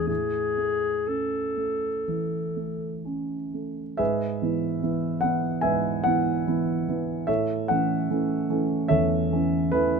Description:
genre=classical, romantic duo for clarinet and grand piano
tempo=60-75 BPM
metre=4/4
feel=rubato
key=A major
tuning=A4 = 441 Hz
part: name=mellow clarinet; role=melody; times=0.0-3.1 s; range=G#4 to A4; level=-27 LUFS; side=left 3 dB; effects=none
part: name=dark concert grand piano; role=accompaniment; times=0.0-10.0 s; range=E2 to G#5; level=-24 LUFS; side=right 2 dB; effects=none
room=little or no reverb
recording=close, detailed microphones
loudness=-23 LUFS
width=side -5 dB against mid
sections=0.0-4.0 A section; 4.0-10.0 B section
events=none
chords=0.1 A; 4.0 E/G#; 7.3 A

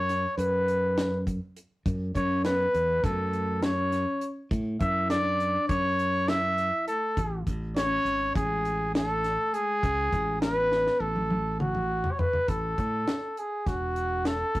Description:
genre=progressive instrumental, band music in an uneven meter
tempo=203 BPM (eighths)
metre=9/8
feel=straight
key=A major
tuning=A4 = 440 Hz
part: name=warm trumpet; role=melody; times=0.0-14.6 s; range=F#4 to E5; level=-26 LUFS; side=equal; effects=none
part: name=modern bright fingered electric bass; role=bass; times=0.0-14.6 s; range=E1 to A2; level=-32 LUFS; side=equal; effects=none
part: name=deep reggae drum kit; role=drums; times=0.1-14.6 s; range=hi-hat, kick drum, snare drum, toms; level=-30 LUFS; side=equal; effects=none
part: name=vibraphone with soft mallets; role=second line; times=2.2-14.6 s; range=G#3 to C#6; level=-36 LUFS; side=left 1 dB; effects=none
room=moderate studio reverb, RT60 0.6 s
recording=rough rehearsal-room recording, warm saturation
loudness=-25 LUFS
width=side -18 dB against mid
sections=0.0-12.5 A section; 12.5-14.6 B section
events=drum fill 10.7-12.5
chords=0.0 D6 (rootless); 1.9 F#m7; 7.2 Amaj7; 12.5 N.C.; 13.7 Esus4

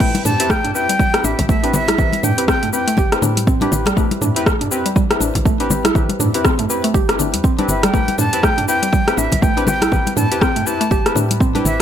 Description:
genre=afro house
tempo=121 BPM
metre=4/4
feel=swing 59% on 16ths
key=A minor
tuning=A4 = 436 Hz
part: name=breathy bright jazz flute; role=melody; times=0.0-3.2, 7.7-11.8 s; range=E5 to A5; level=-21 LUFS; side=equal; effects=ping-pong delay
part: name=mallet-like synth pluck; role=arpeggios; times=0.0-11.8 s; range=E3 to G4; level=-22 LUFS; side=right 2 dB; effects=chorus, sidechain pumping, ping-pong delay
part: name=deep mellow chord stab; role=stabs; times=0.0-11.8 s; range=C4 to B4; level=-23 LUFS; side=left 2 dB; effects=chorus, sidechain pumping, ping-pong delay
part: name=woody FM bass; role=bass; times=0.0-11.8 s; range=G1 to A2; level=-23 LUFS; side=equal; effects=tube saturation, sidechain pumping
part: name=deep house drum kit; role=drums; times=0.0-11.8 s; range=crash cymbal, hi-hat, rim click, shaker, toms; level=-20 LUFS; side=left 1 dB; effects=overdrive
part: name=electronic kick drum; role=drums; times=0.0-11.5 s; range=none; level=-17 LUFS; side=equal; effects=overdrive
part: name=congas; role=percussion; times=0.1-11.8 s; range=none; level=-24 LUFS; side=left 3 dB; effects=none
room=little or no reverb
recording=none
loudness=-14 LUFS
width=side -9 dB against mid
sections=0.0-11.8 A section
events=drop 0.0-11.8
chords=0.0 Am7

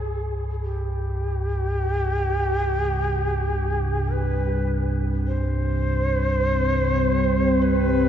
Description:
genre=dark ambient drone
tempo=free time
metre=none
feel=none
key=unclear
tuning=A4 = 441 Hz
part: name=breathy mellow shakuhachi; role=melody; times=0.0-8.1 s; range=G4 to C5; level=-26 LUFS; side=equal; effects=diffuse ambient delay
part: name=deep rumbling drone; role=drone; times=0.0-8.1 s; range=C2 to G2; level=-24 LUFS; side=equal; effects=built-in reverb
part: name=bronze singing bowl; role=texture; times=0.0-8.1 s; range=B5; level=-57 LUFS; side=left 4 dB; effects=none
part: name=deep dark ambient pad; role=sustained chords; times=6.1-8.1 s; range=G3 to C4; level=-22 LUFS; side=left 1 dB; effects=chorus, built-in reverb
room=wet cathedral reverb, RT60 5.1 s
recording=nothing above 7.7 kHz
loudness=-21 LUFS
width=side -9 dB against mid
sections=0.0-8.1 A section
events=none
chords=0.0 C5

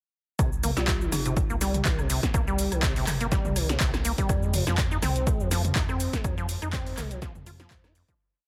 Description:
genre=acid house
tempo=123 BPM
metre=4/4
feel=swing 55% on 16ths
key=C minor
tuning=A4 = 441 Hz
part: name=deep acid bass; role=riff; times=0.4-8.1 s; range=F2 to F4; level=-34 LUFS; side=equal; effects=tube saturation, subtle chorus, cassette tape, dub echo
part: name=saturated sub bass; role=bass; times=0.4-8.0 s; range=G1 to F2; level=-33 LUFS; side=equal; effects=sidechain pumping
part: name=electronic kick drum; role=drums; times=0.4-8.2 s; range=none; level=-30 LUFS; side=equal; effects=none
part: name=punchy analog drum machine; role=drums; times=0.4-8.2 s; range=handclaps, hi-hat, rim click, shaker, snare drum, toms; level=-33 LUFS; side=equal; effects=overdrive
part: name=folk marimba with hard mallets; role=melody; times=0.8-1.3 s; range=Eb4 to F4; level=-39 LUFS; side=equal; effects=tape echo
room=light reverb, digital ambience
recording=heavily compressed radio sound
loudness=-26 LUFS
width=mono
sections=0.4-8.2 drop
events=drop 0.4-8.2; fade-out 5.6-8.2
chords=0.4 Cm; 4.3 Fm

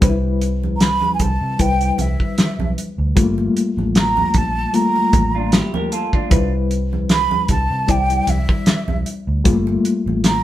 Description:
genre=lush 1970s-style soul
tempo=76 BPM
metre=4/4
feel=swing 54% on 16ths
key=C major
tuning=A4 = 439 Hz
part: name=reed electric piano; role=accompaniment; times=0.0-10.4 s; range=G3 to D5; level=-21 LUFS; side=left 4 dB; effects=tremolo
part: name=vintage muted fingered electric bass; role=bass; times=0.0-10.4 s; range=G1 to C3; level=-22 LUFS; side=equal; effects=none
part: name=warm soul drum kit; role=drums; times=0.0-10.4 s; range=hi-hat, kick drum, snare drum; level=-17 LUFS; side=equal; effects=none
part: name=congas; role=percussion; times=0.0-10.2 s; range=none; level=-28 LUFS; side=right 4 dB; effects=none
part: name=breathy concert flute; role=melody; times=0.8-10.4 s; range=E5 to B5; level=-20 LUFS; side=right 2 dB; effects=slapback echo
part: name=electric guitar through a small old amp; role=riff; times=5.3-6.5 s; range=D4 to Bb4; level=-24 LUFS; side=right 2 dB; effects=none
room=moderate studio reverb, RT60 0.7 s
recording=band playing live in one room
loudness=-15 LUFS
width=side -13 dB against mid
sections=0.0-10.4 A section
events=none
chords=0.0 Cmaj7; 3.2 Gm9; 6.3 Cmaj7; 9.5 Gm9

